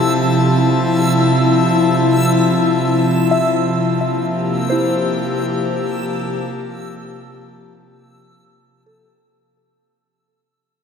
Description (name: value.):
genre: ambient.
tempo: 65 BPM.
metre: 3/4.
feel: straight.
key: unclear.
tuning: A4 = 440 Hz.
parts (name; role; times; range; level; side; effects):
airy breathy pad; sustained chords; 0.0-9.4 s; C3 to A5; -15 LUFS; left 1 dB; chorus.
soft synth bell; arpeggios; 0.0-9.8 s; E4 to E5; -24 LUFS; left 2 dB; chorus, phaser, ping-pong delay.
backwards swelling texture; texture; 0.0-9.4 s; E6; -26 LUFS; right 1 dB; built-in reverb.
room: wet plate reverb, RT60 2.9 s.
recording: dreamy mix soaked in reverb.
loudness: -14 LUFS.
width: side -6 dB against mid.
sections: 0.0-9.4 A section.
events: fade-out 1.9-9.4.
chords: 0.0 Fmaj7/C; 3.8 Gm9/C.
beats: 0.07 | 1.00 1.92 2.84 | 3.76 4.68 5.61 | 6.54 7.47 8.42.